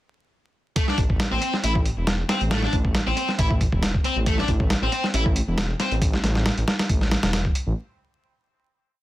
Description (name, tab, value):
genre	breakbeat, breaks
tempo	137 BPM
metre	4/4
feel	swing 54% on 16ths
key	A minor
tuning	A4 = 439 Hz
part	sludgy distorted guitar	riff	0.8-5.9 s	A3 to E4	-27 LUFS	left 1 dB	overdrive, tube saturation, vintage 12-bit sampler grit, dub echo
part	dusty soul sampler-style drum kit	drums	0.8-7.7 s	hi-hat, kick drum, snare drum	-22 LUFS	equal	studio reverb
part	dark detuned saw bass	bass	1.0-7.7 s	E1 to A1	-24 LUFS	equal	tube saturation
room	light reverb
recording	dense, heavily limited modern master, vinyl crackle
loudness	-20 LUFS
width	side -15 dB against mid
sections	0.8-7.8 drop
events	drop 0.8-7.8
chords	0.8 Am